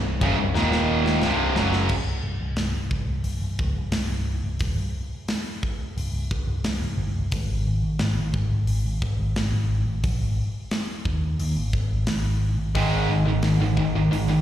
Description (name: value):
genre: heavy metal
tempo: 88 BPM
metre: 4/4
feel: straight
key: unclear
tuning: A4 = 441 Hz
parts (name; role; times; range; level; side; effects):
- tight distorted guitar; riff; 0.0-1.9, 12.8-14.4 s; C2 to Ab3; -25 LUFS; left 10 dB; distortion, slapback echo
- tight distorted guitar; riff; 0.0-1.9, 12.8-14.4 s; C2 to Ab3; -24 LUFS; right 8 dB; distortion, slapback echo
- picked electric bass; bass; 0.0-14.4 s; C1 to Eb2; -24 LUFS; equal; none
- tight metal drum kit; drums; 0.2-14.3 s; crash cymbal, hi-hat, kick drum, snare drum; -29 LUFS; equal; none
room: little or no reverb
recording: live gig heard through the venue's PA, recital hall reverb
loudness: -22 LUFS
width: side -11 dB against mid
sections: 0.0-1.9 A section; 1.9-14.4 B section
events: drum fill 0.6-1.9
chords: 0.0 C5; 0.6 Eb5; 1.2 C5; 1.9 N.C.; 7.3 Ab5